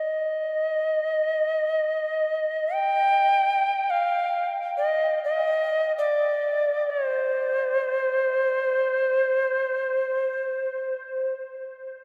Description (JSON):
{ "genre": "world meditative, free-time meditation music", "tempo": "free time", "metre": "none", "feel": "none", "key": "C minor", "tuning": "A4 = 440 Hz", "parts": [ { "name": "bright reedy Native American-style cedar flute", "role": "solo", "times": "0.0-11.3 s", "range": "C5 to G5", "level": "-25 LUFS", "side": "equal", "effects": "tape echo" } ], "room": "wet huge ambient reverb, RT60 7.7 s", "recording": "dreamy mix soaked in reverb", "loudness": "-25 LUFS", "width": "mono", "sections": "0.0-12.0 A section", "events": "none", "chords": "none", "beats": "free time" }